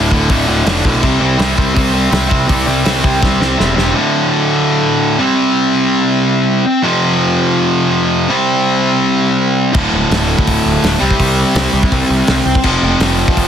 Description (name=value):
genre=punk rock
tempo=165 BPM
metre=4/4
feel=straight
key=unclear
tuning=A4 = 440 Hz
part: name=distorted electric guitar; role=riff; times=0.0-13.5 s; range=D2 to C4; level=-12 LUFS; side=equal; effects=overdrive
part: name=fuzz picked electric bass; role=bass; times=0.0-3.9, 9.7-13.5 s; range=D1 to C2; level=-17 LUFS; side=equal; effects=overdrive
part: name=loose indie drum kit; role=drums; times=0.1-3.9, 9.7-13.5 s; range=crash cymbal, hi-hat, kick drum, snare drum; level=-16 LUFS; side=equal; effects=none
room=light reverb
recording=dense, heavily limited modern master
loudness=-11 LUFS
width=side -8 dB against mid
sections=0.0-3.9 A section; 3.9-13.5 B section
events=drum fill 3.2-3.9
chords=0.0 Dm; 1.0 C5; 3.9 D5; 5.2 C5; 6.8 F5; 8.3 C5; 9.7 D5; 11.0 C5; 12.6 F5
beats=0.30 0.66 | 1.03 1.39 1.76 2.12 | 2.49 2.85 3.22 3.58 | 3.94 4.31 4.67 5.03 | 5.39 5.76 6.12 6.48 | 6.84 7.21 7.57 7.93 | 8.29 8.65 9.02 9.38 | 9.74 10.10 10.47 10.83 | 11.19 11.55 11.92 12.28 | 12.64 13.01 13.37